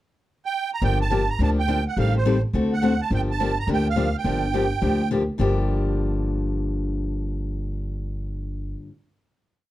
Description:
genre	acoustic string swing (jazz manouche)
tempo	210 BPM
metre	4/4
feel	swing 59% on 8ths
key	G minor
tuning	A4 = 440 Hz
part	musette accordion	melody	0.5-5.1 s	C5 to Bb5	-27 LUFS	right 7 dB	none
part	picked steel-string acoustic guitar	accompaniment	0.8-8.9 s	G2 to A4	-26 LUFS	left 3 dB	none
part	upright bass	bass	0.8-8.7 s	G1 to D2	-24 LUFS	equal	none
room	light reverb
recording	dark, warm production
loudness	-21 LUFS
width	side -15 dB against mid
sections	0.0-0.8 pickup bar; 0.8-5.4 A section; 5.4-7.7 final chord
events	none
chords	0.0 N.C.; 0.8 Gm7; 2.0 Am7b5; 2.5 D7; 3.1 Gm7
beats	0.26 0.54 | 0.82 1.11 1.40 1.68 | 1.97 2.25 2.54 2.82 | 3.10 3.39 3.68 3.96 | 4.25 4.53 4.82 5.11 | 5.39 5.68 5.97 6.25 | 6.54 6.83 7.12 7.40

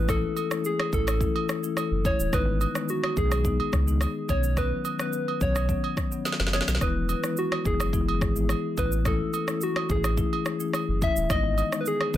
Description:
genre	afrobeats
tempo	107 BPM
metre	4/4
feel	straight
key	unclear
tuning	A4 = 440 Hz
part	soft struck synth lead	melody	0.0-12.2 s	F#4 to E5	-30 LUFS	left 1 dB	chorus, plate reverb, tape echo
part	warm sub bass	bass	0.0-12.2 s	D#1 to C#2	-27 LUFS	equal	none
part	marimba with soft mallets	accompaniment	0.1-12.2 s	D#3 to E4	-30 LUFS	left 5 dB	plate reverb
part	deep house drum kit	drums	0.1-12.2 s	kick drum, rim click, shaker, snare drum	-29 LUFS	equal	none
part	agogo bells	percussion	0.1-12.1 s	none	-35 LUFS	right 8 dB	none
room	light reverb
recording	none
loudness	-23 LUFS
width	side -12 dB against mid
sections	0.0-12.2 A section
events	drum fill 6.3-6.8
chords	0.0 A; 2.3 G#m; 4.3 Badd9; 6.8 E; 8.8 A; 11.3 G#m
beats	| 0.08 0.65 1.21 1.77 | 2.33 2.89 3.45 4.01 | 4.57 5.13 5.69 6.25 | 6.81 7.37 7.93 8.49 | 9.06 9.62 10.18 10.74 | 11.30 11.86

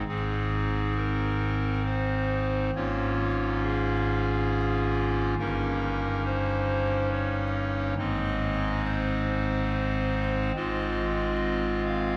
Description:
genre	classical, chorale-style piece for pipe organ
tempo	69 BPM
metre	3/4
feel	straight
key	Ab major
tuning	A4 = 440 Hz
part	pipe organ, clarinet reed	solo	0.0-12.2 s	G1 to F5	-28 LUFS	equal	none
room	wet cathedral reverb, RT60 6.0 s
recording	dark, warm production, vinyl crackle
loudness	-28 LUFS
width	mono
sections	0.1-12.2 A section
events	none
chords	0.1 Ab; 2.7 Bbm7/Ab; 5.4 Eb7/G; 8.0 Ab; 10.6 Fm/Ab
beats	| 0.07 0.96 1.85 | 2.74 3.62 4.50 | 5.38 6.25 7.11 | 7.97 8.83 9.69 | 10.56 11.42

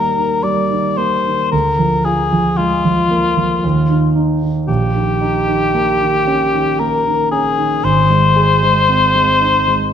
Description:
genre	classical, romantic duo for cor anglais and grand piano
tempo	57 BPM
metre	3/4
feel	rubato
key	Ab major from 4.7 s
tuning	A4 = 437 Hz
part	mellow cor anglais	melody	0.0-9.9 s	F4 to D5	-15 LUFS	left 3 dB	none
part	dark concert grand piano	accompaniment	0.0-9.9 s	Ab1 to Ab4	-16 LUFS	right 2 dB	none
room	wet recital hall reverb, RT60 1.4 s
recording	none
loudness	-12 LUFS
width	side -8 dB against mid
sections	0.0-9.9 A section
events	none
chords	0.0 Eb; 1.5 Bb7/D; 3.6 N.C.; 4.7 Eb7/Bb; 7.8 Ab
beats	0.44 | 1.53 2.58 3.63 | 4.68 5.74 6.79 | 7.83 8.88

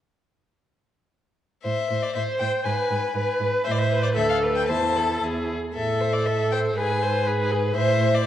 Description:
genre	quick classical-period movement for string quartet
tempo	113-123 BPM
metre	2/4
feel	rubato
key	A minor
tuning	A4 = 441 Hz
part	rich violin	melody	1.6-8.3 s	D5 to A5	-27 LUFS	left 6 dB	none
part	rich violin	second line	1.6-8.3 s	G#4 to C5	-27 LUFS	left 2 dB	none
part	rich cello	bass	1.6-8.3 s	D2 to A2	-27 LUFS	right 3 dB	none
part	rich viola	accompaniment	2.2-8.3 s	E4 to C5	-26 LUFS	right 1 dB	none
room	wet concert hall reverb, RT60 2.1 s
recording	worn, warbling old tape, cassette tape, warbly pitch drift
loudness	-21 LUFS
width	side -11 dB against mid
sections	1.6-8.3 A section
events	none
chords	1.6 Am; 2.7 G#m; 3.7 Am; 4.2 D5; 4.7 Am/E; 5.7 Am; 6.8 G#m; 7.8 Am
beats	| 1.65 2.16 | 2.66 3.15 | 3.65 4.16 | 4.69 5.22 | 5.74 6.26 | 6.77 7.26 | 7.76 8.26

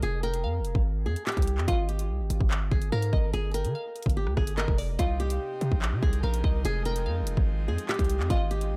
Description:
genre	hip hop, drill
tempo	145 BPM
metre	4/4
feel	half-time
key	unclear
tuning	A4 = 439 Hz
part	flamenco guitar	melody	0.0-8.8 s	F4 to Bb4	-35 LUFS	equal	dub echo
part	hard-hitting 808-style bass	bass	0.0-8.8 s	F1 to D3	-31 LUFS	equal	none
part	drill drum kit	drums	0.0-8.7 s	handclaps, hi-hat, kick drum, rim click	-30 LUFS	equal	none
part	glassy wavetable pluck	second line	0.2-8.8 s	D5 to G5	-45 LUFS	equal	chorus, dub echo
part	pipe organ, full organ	sustained chords	5.0-8.8 s	C3 to G4	-44 LUFS	equal	none
room	little or no reverb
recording	echo-heavy mix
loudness	-28 LUFS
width	mono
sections	0.0-8.8 A section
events	none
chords	0.0 Fm; 1.7 Ab5; 3.3 Gm; 5.0 Cm; 6.6 Fm7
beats	| 0.03 0.44 0.85 1.27 | 1.68 2.10 2.51 2.92 | 3.34 3.75 4.16 4.58 | 4.99 5.41 5.82 6.23 | 6.65 7.06 7.47 7.89 | 8.30 8.72

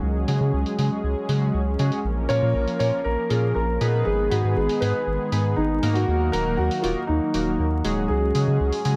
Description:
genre	italo disco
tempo	119 BPM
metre	4/4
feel	straight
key	G# dorian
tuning	A4 = 440 Hz
part	warm analog pad	sustained chords	0.0-9.0 s	D#3 to A#4	-31 LUFS	equal	chorus
part	chorused polysynth	stabs	0.0-9.0 s	G#3 to B4	-32 LUFS	equal	none
part	round analog bass	bass	0.0-9.0 s	D#1 to C#3	-26 LUFS	equal	none
part	electronic hi-hat	drums	0.3-9.0 s	none	-39 LUFS	equal	low-pass filter on cymbals, low-pass filter on hats, low-pass filter on room
part	dark grand piano	melody	2.3-9.0 s	D#4 to C#5	-27 LUFS	equal	digital delay
room	light reverb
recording	vinyl crackle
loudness	-23 LUFS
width	mono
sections	0.0-9.0 A section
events	none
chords	0.0 C#sus4; 2.0 A#m; 4.1 G#m; 6.1 D#m; 8.1 C#sus4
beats	| 0.03 0.53 1.04 1.54 | 2.05 2.55 3.05 3.56 | 4.06 4.57 5.07 5.58 | 6.08 6.58 7.09 7.59 | 8.10 8.60

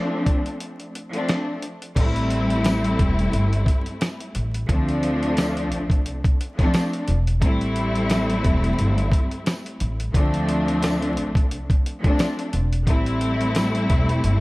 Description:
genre	hip hop, boom-bap hip-hop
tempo	88 BPM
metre	4/4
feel	swing 56% on 16ths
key	A minor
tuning	A4 = 438 Hz
part	warm studio string section	accompaniment	0.0-14.4 s	F3 to E4	-23 LUFS	left 1 dB	cassette tape, high-pass filter, low-pass filter
part	dusty soul sampler-style drum kit	drums	0.3-14.4 s	crash cymbal, hi-hat, kick drum, rim click, snare drum	-22 LUFS	equal	none
part	upright bass	bass	2.0-14.4 s	E1 to D2	-24 LUFS	equal	none
part	tambourine	percussion	2.7-13.7 s	none	-43 LUFS	right 4 dB	none
room	small room ambience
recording	dark, warm production, vinyl crackle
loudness	-19 LUFS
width	side -21 dB against mid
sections	0.0-2.0 A section; 2.0-14.4 B section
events	break 0.0-2.0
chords	0.0 Dm7; 2.0 Am7; 4.7 Dm7; 7.4 Am7; 10.1 Dm7; 12.9 Am7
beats	0.60 1.28 | 1.96 2.65 3.33 4.01 | 4.69 5.37 6.05 6.74 | 7.42 8.10 8.78 9.46 | 10.15 10.83 11.51 12.19 | 12.87 13.55 14.24

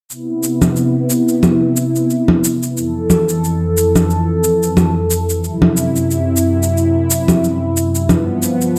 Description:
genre	folktronica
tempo	90 BPM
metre	4/4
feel	swing 56% on 16ths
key	C major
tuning	A4 = 440 Hz
part	warm analog pad	sustained chords	0.1-8.8 s	F2 to A4	-17 LUFS	equal	chorus
part	shaker and congas	drums	0.1-8.8 s	none	-18 LUFS	equal	none
room	moderate echo chamber reverb, RT60 2.1 s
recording	none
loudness	-15 LUFS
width	mono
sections	0.1-8.8 A section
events	filter sweep on analog synth pad 0.1-8.8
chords	0.1 Cmaj7; 2.8 Fmaj7; 5.4 C; 8.1 G7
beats	| 0.10 0.77 1.44 2.10 | 2.77 3.44 4.10 4.77 | 5.43 6.10 6.77 7.43 | 8.10 8.77

